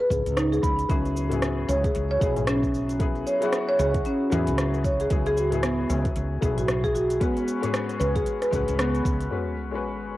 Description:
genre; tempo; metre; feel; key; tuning
organic downtempo; 114 BPM; 4/4; swing 59% on 16ths; unclear; A4 = 440 Hz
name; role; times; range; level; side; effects
marimba with medium mallets; arpeggios; 0.0-9.3 s; B3 to B5; -26 LUFS; right 1 dB; cassette tape, tape echo
woody fretless electric bass; bass; 0.1-9.3 s; B1 to E2; -27 LUFS; equal; lush chorus, sidechain pumping
electronic kick drum; drums; 0.1-9.2 s; none; -28 LUFS; equal; cassette tape
organic electronic drum kit; drums; 0.1-10.2 s; hi-hat, rim click, shaker; -32 LUFS; right 1 dB; overdrive, low-pass filter on hats, cassette tape, low-pass filter on perc, low-pass filter on snare, low-pass filter on room
tabla; percussion; 0.1-8.6 s; none; -38 LUFS; left 3 dB; none
felt-muted upright piano; accompaniment; 0.9-10.2 s; F#3 to B4; -30 LUFS; left 4 dB; sidechain pumping, cassette tape, tape echo
sub drop; sound effects; 9.3-10.2 s; none; -34 LUFS; equal; none
room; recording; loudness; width
moderate spring reverb, RT60 2.3 s; home recording on cassette; -22 LUFS; side -16 dB against mid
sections
0.0-9.3 A section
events
impact 9.3-10.2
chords
0.0 G#m/C#; 0.9 Eadd9; 7.2 G#m; 9.3 C#5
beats
0.37 | 0.90 1.42 1.95 2.48 | 3.00 3.53 4.05 4.58 | 5.11 5.63 6.16 6.69 | 7.21 7.74 8.27 8.79 | 9.32 9.84

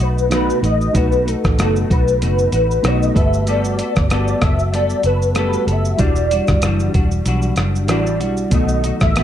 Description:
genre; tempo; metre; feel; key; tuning
indie pop, bedroom pop; 95 BPM; 4/4; swing 55% on 16ths; unclear; A4 = 439 Hz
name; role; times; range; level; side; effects
warm velvety synth lead; melody; 0.0-9.2 s; A4 to E5; -20 LUFS; left 1 dB; ensemble chorus, slapback echo
reed electric piano; accompaniment; 0.0-9.2 s; D#3 to D5; -25 LUFS; right 5 dB; cassette tape
semi-hollow electric guitar; accompaniment; 0.0-9.2 s; B2 to A4; -23 LUFS; left 4 dB; ensemble chorus, warbly pitch drift
vintage muted fingered electric bass; bass; 0.0-9.2 s; E1 to B1; -19 LUFS; equal; none
dusty soul sampler-style drum kit; drums; 0.2-9.2 s; hi-hat, kick drum, rim click, shaker; -19 LUFS; equal; none
room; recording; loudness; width
light reverb; dark, warm production; -14 LUFS; side -10 dB against mid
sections
0.0-9.2 A section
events
none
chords
0.0 B7; 3.2 Gmaj9; 6.0 Em9; 8.5 B7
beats
0.32 | 0.95 1.58 2.21 2.84 | 3.47 4.10 4.74 5.37 | 6.00 6.63 7.26 7.89 | 8.52 9.15

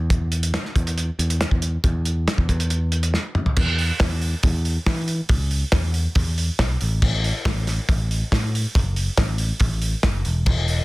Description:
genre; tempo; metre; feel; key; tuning
indie rock; 139 BPM; 4/4; straight; A major; A4 = 438 Hz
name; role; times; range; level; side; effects
picked electric bass; bass; 0.0-10.8 s; E1 to E3; -22 LUFS; equal; none
cloth-damped thuddy drum kit; drums; 0.1-10.8 s; crash cymbal, hi-hat, kick drum, snare drum, toms; -22 LUFS; equal; none
room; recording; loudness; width
little or no reverb; dense, heavily limited modern master; -19 LUFS; side -20 dB against mid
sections
0.0-3.6 A section; 3.6-10.8 B section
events
drum fill 3.1-3.6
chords
none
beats
| 0.11 0.54 0.98 1.41 | 1.84 2.28 2.71 3.14 | 3.58 4.01 4.44 4.87 | 5.30 5.74 6.17 6.60 | 7.03 7.46 7.89 8.32 | 8.75 9.18 9.61 10.04 | 10.47

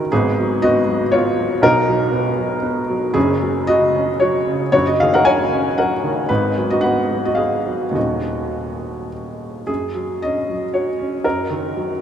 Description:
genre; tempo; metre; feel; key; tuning
neoclassical minimalist piano; 101-120 BPM; 3/4; rubato; Eb minor; A4 = 440 Hz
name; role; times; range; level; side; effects
felt-muted upright piano; solo; 0.0-12.0 s; Eb1 to Ab5; -16 LUFS; equal; none
room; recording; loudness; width
wet cathedral reverb, RT60 5.9 s; in a vast, echoing space; -16 LUFS; side -9 dB against mid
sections
0.0-9.7 A section; 9.7-12.0 B section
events
none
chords
0.1 Abm7; 1.6 Bmaj7; 3.2 Gbsus2; 4.7 Ebm7/Gb; 6.3 Abm7; 8.0 Ebm7; 9.7 Gbsus2; 11.2 Ebm/Gb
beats
| 0.11 0.61 1.12 | 1.62 2.13 2.64 | 3.16 3.68 4.21 | 4.73 5.24 5.76 | 6.29 6.82 7.37 | 7.95 8.54 9.11 | 9.68 10.21 10.73 | 11.24 11.76

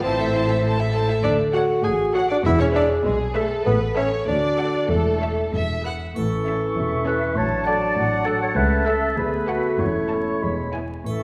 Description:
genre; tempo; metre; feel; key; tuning
cinematic, playful, whimsical film cue; 98 BPM; 2/4; straight; A major; A4 = 439 Hz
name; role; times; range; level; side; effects
clear chamber violin section; melody; 0.0-11.0 s; E5 to A5; -34 LUFS; equal; none
rich studio violin section; second line; 0.0-11.0 s; E4 to G#5; -32 LUFS; equal; none
mellow bassoon; accompaniment; 0.0-11.2 s; E3 to G#4; -27 LUFS; equal; none
rich chamber viola section; accompaniment; 0.0-11.0 s; B3 to C#5; -36 LUFS; equal; none
dark French horn section; sustained chords; 0.0-11.2 s; E3 to A4; -30 LUFS; equal; none
clear chamber double bass section; bass; 0.0-11.2 s; E1 to D2; -30 LUFS; equal; none
rich studio cello section; bass; 0.0-11.2 s; C#2 to B2; -31 LUFS; equal; none
mellow oboe; second line; 6.2-11.2 s; A5 to C#6; -33 LUFS; equal; none
warm clarinet; second line; 6.2-11.2 s; E4 to D5; -27 LUFS; equal; none
triangle; percussion; 6.2-7.3, 11.1-11.2 s; none; -52 LUFS; equal; none
small flute group; second line; 6.8-11.2 s; B4 to A5; -32 LUFS; equal; none
room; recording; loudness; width
wet scoring stage reverb, RT60 1.6 s; heard from further back in the room, vinyl crackle; -21 LUFS; mono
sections
0.0-6.2 A section; 6.2-11.2 B section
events
none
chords
0.0 Am; 1.2 Dmaj7; 2.5 E; 3.7 A; 4.3 D; 4.9 A/E; 5.5 E; 6.2 A; 7.4 D/A; 8.6 A/C#; 9.2 Bm7/D; 9.8 A/E; 10.4 E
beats
| 0.03 0.64 | 1.24 1.84 | 2.45 3.05 | 3.66 4.28 | 4.90 5.53 | 6.16 6.77 | 7.37 7.97 | 8.57 9.17 | 9.80 10.43 | 11.06

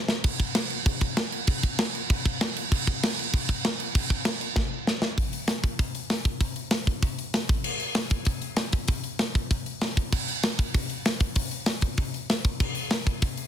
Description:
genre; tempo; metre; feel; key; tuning
punk; 194 BPM; 4/4; straight; none; none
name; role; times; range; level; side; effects
tight metal drum kit; drums; 0.1-13.4 s; crash cymbal, hi-hat, kick drum, snare drum; -24 LUFS; equal; soft clipping on kick
room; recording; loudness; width
little or no reverb; dense, heavily limited modern master; -24 LUFS; side -10 dB against mid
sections
0.2-5.2 A section; 5.2-13.5 B section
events
drum fill 0.0, 4.6-5.2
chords
none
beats
| 0.24 0.55 0.86 1.17 | 1.47 1.78 2.09 2.40 | 2.71 3.01 3.32 3.63 | 3.94 4.25 4.55 4.86 | 5.17 5.48 5.79 6.10 | 6.41 6.72 7.03 7.34 | 7.64 7.96 8.26 8.57 | 8.88 9.19 9.50 9.81 | 10.12 10.43 10.74 11.05 | 11.36 11.67 11.98 12.29 | 12.60 12.91 13.22

